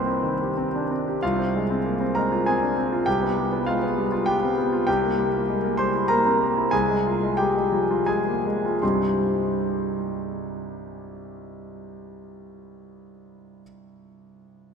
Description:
classical, virtuoso piano study; 78-101 BPM; 3/4; rubato; C minor; A4 = 440 Hz
clear concert grand piano; solo; 0.0-14.7 s; C2 to C6; -22 LUFS; equal
wet cathedral reverb, RT60 5.5 s; in a vast, echoing space; -21 LUFS; side -6 dB against mid
0.0-1.2 A section; 1.2-8.8 B section; 8.8-13.0 C section
slowing down 4.0-8.8
0.0 Cm; 1.2 Fm/C; 3.1 G7/C; 4.9 C7; 6.7 Fm/C; 8.8 Cm

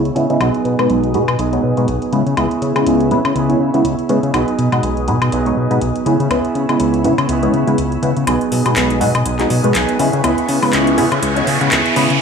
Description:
filtered disco house; 122 BPM; 4/4; swing 56% on 16ths; A4 = 440 Hz
rich studio string section; sustained chords; 0.0-12.2 s; B4 to E6; -28 LUFS; left 2 dB; low-pass filter
electric guitar with an envelope filter; riff; 0.0-12.2 s; F#3 to G#4; -20 LUFS; right 5 dB; wide subtle chorus, low-pass filter
fat analog bass; bass; 0.0-12.2 s; B1 to C#3; -18 LUFS; left 2 dB; low-pass filter
house drum kit; drums; 0.1-12.2 s; handclaps, hi-hat, woodblock; -22 LUFS; left 2 dB; overdrive, low-pass filter on hats, low-pass filter on perc, low-pass filter on snare, low-pass filter on room
funky polysynth comp; accompaniment; 0.2-12.0 s; G#3 to C#5; -18 LUFS; equal; chorus, phaser, low-pass filter
riser; sound effects; 9.4-12.2 s; -22 LUFS; right 3 dB
light reverb, digital ambience; high-pass filter, studio reverb; -13 LUFS; side -6 dB against mid
0.0-8.3 A section; 8.3-12.2 B section
filter sweep 0.0-8.3, 8.3-12.2; build-up 8.3-12.2; riser 9.4-12.2
0.4 B6; 2.1 C#m7; 4.3 B6; 6.1 C#m7; 8.3 B6; 10.0 C#m7

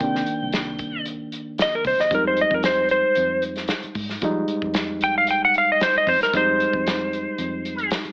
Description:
straight-eighth soul blues; 114 BPM; 4/4; straight; A4 = 440 Hz
electric slide guitar; melody; 0.0-7.9 s; Bb4 to G5; -19 LUFS; equal
overdriven reed electric piano; accompaniment; 0.0-8.1 s; Eb3 to Eb4; -28 LUFS; equal
vintage muted fingered electric bass; bass; 0.0-8.1 s; C2 to F3; -32 LUFS; equal
warm soul drum kit; drums; 0.0-8.1 s; hi-hat, kick drum, snare drum; -27 LUFS; equal
moderate studio reverb, RT60 0.8 s; AM radio sound; -19 LUFS; side -28 dB against mid
0.0-8.1 A section
electric slide guitar solo 0.0-8.1
0.0 Cm9; 2.1 Fm9

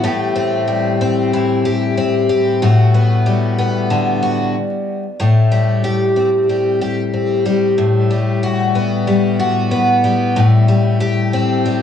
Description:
folktronica; 93 BPM; 4/4; swing 56% on 16ths; A dorian; A4 = 440 Hz
picked twelve-string acoustic guitar; solo; 0.0-11.8 s; A2 to G4; -13 LUFS; left 2 dB; cassette tape
moderate spring reverb, RT60 1.3 s, small room ambience; home recording on cassette, vinyl crackle, studio ambience; -13 LUFS; side -8 dB against mid
0.0-5.2 A section; 5.2-11.8 B section
stop 4.6-5.2
0.0 Am7; 2.6 Gmaj7/A; 5.2 Am7; 7.8 Gmaj9/A; 10.4 Am7

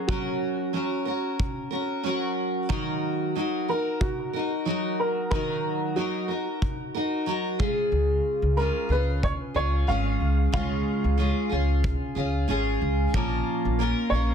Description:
acoustic pop; 92 BPM; 4/4; swing 55% on 16ths; Eb minor; A4 = 441 Hz
dark upright piano; melody; 0.0-14.3 s; Gb4 to F5; -31 LUFS; right 1 dB; tape echo
picked steel-string acoustic guitar; accompaniment; 0.0-14.3 s; Bb2 to Bb4; -26 LUFS; equal; double-tracked left and right
kick drum; drums; 0.1-13.3 s; -29 LUFS; equal
upright bass; bass; 7.9-14.3 s; Ab1 to Db2; -25 LUFS; equal
light reverb; dense, heavily limited modern master; -24 LUFS; side -7 dB against mid
0.0-14.3 A section
0.0 Gb; 2.7 Ebm; 7.6 Db; 13.1 Bbm

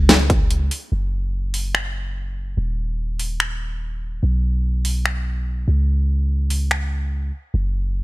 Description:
future bass; 145 BPM; 4/4; swing 55% on 16ths, half-time; A4 = 440 Hz
warm 808-style bass; bass; 0.0-8.0 s; D#1 to C#2; -20 LUFS; equal; sidechain pumping
dubstep drum kit; drums; 0.1-6.8 s; finger snaps, hi-hat, snare drum; -20 LUFS; equal
little or no reverb; -19 LUFS; side -20 dB against mid
0.9-8.0 A section

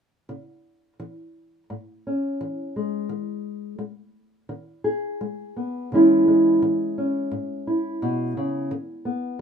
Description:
folk, solo fingerstyle acoustic guitar; 86 BPM; 4/4; rubato; A4 = 440 Hz
nylon-string guitar; solo; 0.3-9.4 s; G#2 to G#4; -21 LUFS; equal
light reverb; minimal, uncompressed stereo recording; -21 LUFS; side -7 dB against mid
0.3-5.9 A section; 5.9-9.4 B section
0.3 C#m; 3.1 G#m/D#; 5.9 C#m; 8.7 G#m/D#

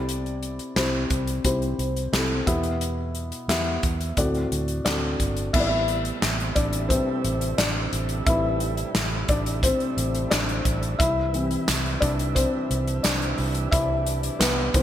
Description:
piano-driven pop; 88 BPM; 4/4; straight; A4 = 440 Hz
felt-muted upright piano; accompaniment; 0.0-14.8 s; A2 to E5; -26 LUFS; left 2 dB
vintage muted fingered electric bass; bass; 0.0-14.8 s; G1 to E2; -28 LUFS; right 1 dB
natural country drum kit; drums; 0.1-14.8 s; crash cymbal, handclaps, hi-hat, kick drum, snare drum; -26 LUFS; equal
tonewheel organ; sustained chords; 5.5-14.8 s; C3 to E4; -33 LUFS; right 4 dB; overdrive, slow rotary speaker
tambourine; percussion; 11.7-14.6 s; -33 LUFS; right 15 dB
moderate lush hall reverb, RT60 2.0 s, small room ambience; bright 1980s-style digital production; -22 LUFS; side -11 dB against mid
0.0-5.5 A section; 5.5-14.8 B section
felt piano solo 5.5-14.8
0.0 Cadd9; 2.5 Em; 4.2 D7; 5.5 Am7; 11.0 C

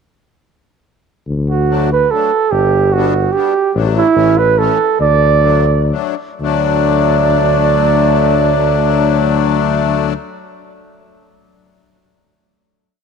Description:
alpine folk, alpine dance band; 119-148 BPM; 3/4; swing 54% on 8ths, rubato; D major; A4 = 440 Hz
mellow tuba; bass; 1.3-10.1 s; G1 to D2; -15 LUFS; left 2 dB
warm flugelhorn; melody; 1.5-10.1 s; E4 to D5; -14 LUFS; right 8 dB
accordion; accompaniment; 1.7-10.1 s; E3 to D4; -18 LUFS; left 15 dB; light tremolo tuning
moderate plate reverb, RT60 3.3 s; 1960s-style stereo with parts hard left and right; -11 LUFS; side -6 dB against mid
1.3-6.4 A section; 6.4-9.4 final chord
slowing down 3.7-6.4
1.3 D; 2.5 G; 3.7 D/A; 4.1 A; 5.0 D

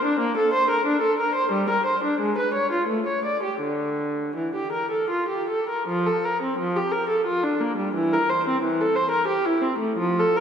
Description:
classical, baroque-style suite movement for unaccompanied viola; 75-93 BPM; 3/4; rubato; D minor, F major from 5.9 s; A4 = 440 Hz
warm viola; solo; 0.0-10.4 s; D3 to D5; -21 LUFS; equal
wet church reverb, RT60 3.4 s; recorded in a church or concert hall; -21 LUFS; side -8 dB against mid
0.0-5.9 A section; 5.9-10.4 A section

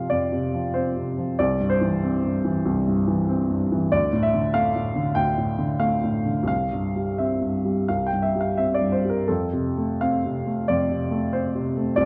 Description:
classical, romantic character piece for solo piano; 80-98 BPM; 4/4; rubato; F major; A4 = 440 Hz
warm baby grand piano; solo; 0.0-12.1 s; C2 to G5; -23 LUFS; equal
moderate recital hall reverb, RT60 1.5 s; dark, warm production; -23 LUFS; mono
0.0-12.1 A section
0.0 F; 1.4 C; 3.9 Dm; 6.5 C; 9.3 F

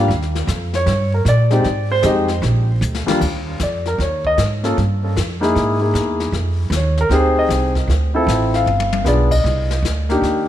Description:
jazz piano trio; 154 BPM; 4/4; swing 65% on 8ths; Eb major; A4 = 437 Hz
warm concert grand piano; melody; 0.0-10.5 s; Eb2 to F5; -18 LUFS; left 1 dB; tape echo
upright bass; bass; 0.0-10.5 s; G1 to Bb2; -18 LUFS; right 1 dB
jazz brush drum kit; drums; 0.1-10.5 s; brushed snare drum, crash cymbal, hi-hat, kick drum, snare drum, toms; -26 LUFS; left 6 dB
light reverb, studio reverb; 1960s-style stereo; -15 LUFS; side -12 dB against mid
0.0-3.2 A section; 3.2-10.5 B section
grand piano solo 0.0-3.2; drum fill 2.8-3.2, 8.7-9.1
0.1 Ebmaj9; 1.7 Fm7; 2.4 Bb; 3.2 Ebsus2; 4.8 Fsus2; 5.5 Emaj7#11; 6.3 Fm9; 7.9 Dm7; 8.7 G7b9; 9.4 Cm9

